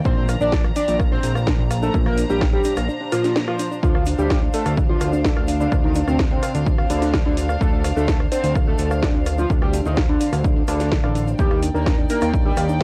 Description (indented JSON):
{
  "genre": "melodic techno",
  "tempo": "127 BPM",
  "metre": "4/4",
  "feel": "straight",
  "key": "D phrygian",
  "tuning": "A4 = 442 Hz",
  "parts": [
    { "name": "warm studio string section", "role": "sustained chords", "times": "0.0-12.8 s", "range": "D4 to Bb5", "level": "-33 LUFS", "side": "equal", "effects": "sidechain pumping" },
    { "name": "soft round pluck", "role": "arpeggios", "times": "0.0-12.8 s", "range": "D4 to F5", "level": "-30 LUFS", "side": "equal", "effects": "chorus, sidechain pumping, tape echo" },
    { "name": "synth brass stab", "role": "stabs", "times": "0.0-12.8 s", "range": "Bb2 to Eb4", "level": "-35 LUFS", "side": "equal", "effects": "none" },
    { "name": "tube shaker", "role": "percussion", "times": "0.0-12.8 s", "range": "none", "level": "-47 LUFS", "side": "equal", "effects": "none" },
    { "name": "granular cloud pad", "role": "texture", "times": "0.0-12.8 s", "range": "D4 to Bb5", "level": "-37 LUFS", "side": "equal", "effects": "none" },
    { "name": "fat analog lead", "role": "melody", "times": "0.1-12.7 s", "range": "C4 to D5", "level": "-27 LUFS", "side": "equal", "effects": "lush chorus, sidechain pumping, cassette tape, analog delay" },
    { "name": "dark detuned synth bell", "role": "second line", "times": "0.1-12.7 s", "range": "C4 to D5", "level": "-34 LUFS", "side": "equal", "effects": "none" },
    { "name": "fat analog bass", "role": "bass", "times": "0.1-12.8 s", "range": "A1 to Eb2", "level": "-26 LUFS", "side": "equal", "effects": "sidechain pumping" },
    { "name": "electronic kick drum", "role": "drums", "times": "0.1-12.8 s", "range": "none", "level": "-23 LUFS", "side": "equal", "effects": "cassette tape" },
    { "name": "techno drum kit", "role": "drums", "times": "0.3-12.8 s", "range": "hi-hat, rim click, snare drum", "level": "-29 LUFS", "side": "equal", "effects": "cassette tape" }
  ],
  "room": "moderate booth ambience, RT60 0.2 s",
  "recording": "home recording on cassette",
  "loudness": "-20 LUFS",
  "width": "mono",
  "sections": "0.0-12.8 A section",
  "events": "break 2.9-3.8",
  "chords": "0.1 Bbadd9; 3.8 Dm7; 11.4 Ebmaj7"
}